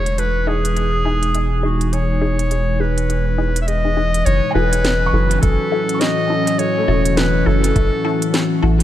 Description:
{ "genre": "ambient dub", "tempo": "103 BPM", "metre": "4/4", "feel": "swing 59% on 16ths", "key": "F# dorian", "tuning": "A4 = 438 Hz", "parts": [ { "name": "clear clarinet", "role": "melody", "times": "0.0-8.6 s", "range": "F#4 to E5", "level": "-21 LUFS", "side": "left 1 dB", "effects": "dub echo" }, { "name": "warbly tape-like pad", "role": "sustained chords", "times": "0.0-8.8 s", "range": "A2 to G#5", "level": "-22 LUFS", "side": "equal", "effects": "chorus, built-in reverb" }, { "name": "filtered dub chord stab", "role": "stabs", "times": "0.0-8.8 s", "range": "D#4 to A4", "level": "-27 LUFS", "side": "left 4 dB", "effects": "phaser, dub echo" }, { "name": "soft dub sub bass", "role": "bass", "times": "0.0-8.8 s", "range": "E1 to A1", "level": "-18 LUFS", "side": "equal", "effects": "none" }, { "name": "organic electronic drum kit", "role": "drums", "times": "0.1-8.8 s", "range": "hi-hat, snare drum", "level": "-24 LUFS", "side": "right 1 dB", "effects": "overdrive, studio reverb, dub echo" }, { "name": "felt-muted upright piano", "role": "arpeggios", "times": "4.5-8.8 s", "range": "A3 to C#6", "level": "-29 LUFS", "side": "right 2 dB", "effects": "dub echo" }, { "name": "electronic kick drum", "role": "drums", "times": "5.4-7.9 s", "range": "none", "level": "-19 LUFS", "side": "equal", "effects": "overdrive, studio reverb" } ], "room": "light reverb, digital ambience", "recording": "none", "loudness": "-15 LUFS", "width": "side -12 dB against mid", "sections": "0.0-4.3 A section; 4.3-8.8 B section", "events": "none", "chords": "0.0 Emaj7; 4.3 F#m7" }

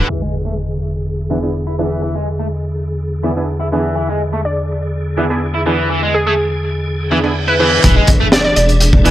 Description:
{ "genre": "breakbeat, breaks", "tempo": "124 BPM", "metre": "4/4", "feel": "straight", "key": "unclear", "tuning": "A4 = 441 Hz", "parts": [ { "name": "tonewheel organ", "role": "sustained chords", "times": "0.0-9.1 s", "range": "E2 to G#4", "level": "-19 LUFS", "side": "equal", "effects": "overdrive, chorus vibrato, fast rotary speaker, vintage 12-bit sampler grit, sidechain pumping, low-pass filter" }, { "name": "overdriven electric guitar", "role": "riff", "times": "0.0-9.1 s", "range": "E3 to E4", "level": "-20 LUFS", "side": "equal", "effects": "tube saturation, low-pass filter, analog delay" }, { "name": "saturated sub bass", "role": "bass", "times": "0.0, 7.8-9.1 s", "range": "E1", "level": "-13 LUFS", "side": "equal", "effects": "none" }, { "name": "impact and reverse cymbal", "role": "sound effects", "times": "0.1-2.0, 7.1-9.1 s", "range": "none", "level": "-24 LUFS", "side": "right 1 dB", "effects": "none" }, { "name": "orchestra-hit-like synth stab", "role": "stabs", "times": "1.3-9.1 s", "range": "B3 to G#4", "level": "-20 LUFS", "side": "right 2 dB", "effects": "built-in reverb, cassette tape, analog delay" }, { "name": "glassy wavetable pluck", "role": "melody", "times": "4.5-8.6 s", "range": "G#4 to D5", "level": "-18 LUFS", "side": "equal", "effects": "chorus, small speaker sound, analog delay" }, { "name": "crunchy breakbeat drum kit", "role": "drums", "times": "7.8-9.1 s", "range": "hi-hat, kick drum, snare drum", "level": "-12 LUFS", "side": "equal", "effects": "none" } ], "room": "small room ambience", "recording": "dry, gritty hardware recording, low-pass filter", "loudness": "-13 LUFS", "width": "side -14 dB against mid", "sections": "0.1-7.8 A section; 7.8-9.1 B section", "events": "impact 0.1-2.0, 7.8-9.1; filter sweep on overdriven electric guitar 0.1-7.8; filter sweep on tonewheel organ 0.1-7.8; filter sweep 0.1-7.8; reverse cymbal 7.1-7.8; drop 7.8-9.1", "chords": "0.1 E7" }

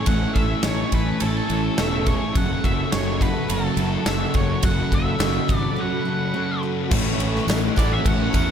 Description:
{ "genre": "rock, shoegaze and dream pop", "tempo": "105 BPM", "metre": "4/4", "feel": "straight", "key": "A major", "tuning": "A4 = 439 Hz", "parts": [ { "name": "octave-fuzz lead guitar", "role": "melody", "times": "0.0-8.5 s", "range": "A4 to F#5", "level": "-28 LUFS", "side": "equal", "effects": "distortion, tape echo" }, { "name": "sweeping resonant pad", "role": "sustained chords", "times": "0.0-8.5 s", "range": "A4 to C#6", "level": "-34 LUFS", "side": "left 1 dB", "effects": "chorus, phaser" }, { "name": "picked twelve-string acoustic guitar", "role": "arpeggios", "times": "0.0-8.5 s", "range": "E3 to G#4", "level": "-33 LUFS", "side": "right 8 dB", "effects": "lush chorus, tape echo" }, { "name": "raw garage guitar", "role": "riff", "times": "0.0-8.5 s", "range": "A2 to A4", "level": "-28 LUFS", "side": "right 14 dB", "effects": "overdrive, reverse reverb" }, { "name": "thick fuzz guitar", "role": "riff", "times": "0.0-8.5 s", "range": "F#2 to A3", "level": "-27 LUFS", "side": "left 11 dB", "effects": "distortion, lush chorus" }, { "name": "fuzz fingered electric bass", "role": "bass", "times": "0.1-8.5 s", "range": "E1 to E2", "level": "-26 LUFS", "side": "equal", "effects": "overdrive" }, { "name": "huge arena drum kit", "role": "drums", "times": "0.1-8.5 s", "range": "crash cymbal, kick drum, ride cymbal, snare drum", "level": "-24 LUFS", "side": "equal", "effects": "none" }, { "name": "distorted electric guitar", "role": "riff", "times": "6.9-8.5 s", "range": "A2 to E4", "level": "-29 LUFS", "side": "equal", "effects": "overdrive" }, { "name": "tambourine", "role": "percussion", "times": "6.9-8.5 s", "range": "none", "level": "-39 LUFS", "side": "right 10 dB", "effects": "none" } ], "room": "little or no reverb", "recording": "none", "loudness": "-19 LUFS", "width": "side -8 dB against mid", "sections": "0.0-6.9 A section; 6.9-8.5 B section", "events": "break 5.8-6.9", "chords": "0.0 Amaj7; 2.4 F#m; 6.9 A6" }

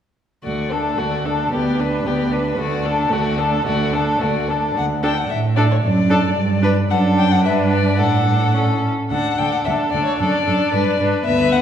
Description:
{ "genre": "quick classical-period movement for string quartet", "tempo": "112 BPM", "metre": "2/4", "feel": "rubato", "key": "D major", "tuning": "A4 = 441 Hz", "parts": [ { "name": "dark violin", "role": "melody", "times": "0.4-11.6 s", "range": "A4 to G5", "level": "-23 LUFS", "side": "left 7 dB", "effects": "none" }, { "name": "warm violin", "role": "second line", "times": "0.4-11.6 s", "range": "F#4 to B4", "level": "-23 LUFS", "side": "left 3 dB", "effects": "none" }, { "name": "warm viola", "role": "accompaniment", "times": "0.4-11.6 s", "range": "A3 to D4", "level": "-22 LUFS", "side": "right 1 dB", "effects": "none" }, { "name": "rich cello", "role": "bass", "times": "0.4-11.6 s", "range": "D2 to A2", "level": "-20 LUFS", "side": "right 3 dB", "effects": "none" } ], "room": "wet recital hall reverb, RT60 1.8 s", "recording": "heard from further back in the room", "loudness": "-16 LUFS", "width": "side -9 dB against mid", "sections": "0.4-4.8 A section; 4.8-11.6 B section", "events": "none", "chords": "0.4 D; 1.5 G/D; 2.6 D; 5.8 D/F#; 6.4 G; 6.9 D/F#; 7.4 G; 8.0 D/A; 8.5 A; 9.1 D5; 10.2 D/F#; 10.7 G" }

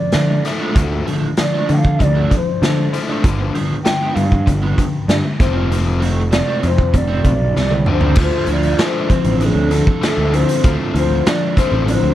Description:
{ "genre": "indie rock", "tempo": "97 BPM", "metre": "4/4", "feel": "straight", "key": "D dorian", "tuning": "A4 = 439 Hz", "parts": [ { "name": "mellow hollow shakuhachi", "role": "melody", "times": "0.0-12.1 s", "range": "A4 to G5", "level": "-22 LUFS", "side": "left 1 dB", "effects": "tape echo" }, { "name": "biting overdriven guitar", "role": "riff", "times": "0.0-12.1 s", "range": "F2 to A3", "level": "-22 LUFS", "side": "left 5 dB", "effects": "none" }, { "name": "fuzz picked electric bass", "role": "bass", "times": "0.1-12.1 s", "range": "F1 to D3", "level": "-18 LUFS", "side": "equal", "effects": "overdrive" }, { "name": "raw garage drum kit", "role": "drums", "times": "0.1-12.0 s", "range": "crash cymbal, hi-hat, kick drum, snare drum, toms", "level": "-18 LUFS", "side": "equal", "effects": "none" }, { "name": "overdriven electric guitar", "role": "riff", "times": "0.3-12.1 s", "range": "F3 to A4", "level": "-23 LUFS", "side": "right 4 dB", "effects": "analog chorus" } ], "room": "little or no reverb", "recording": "none", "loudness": "-14 LUFS", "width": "side -13 dB against mid", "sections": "0.0-8.2 A section; 8.2-12.1 B section", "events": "drum fill 7.6-8.2", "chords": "0.0 Dm; 3.2 G7; 5.4 F6; 8.2 Dm7" }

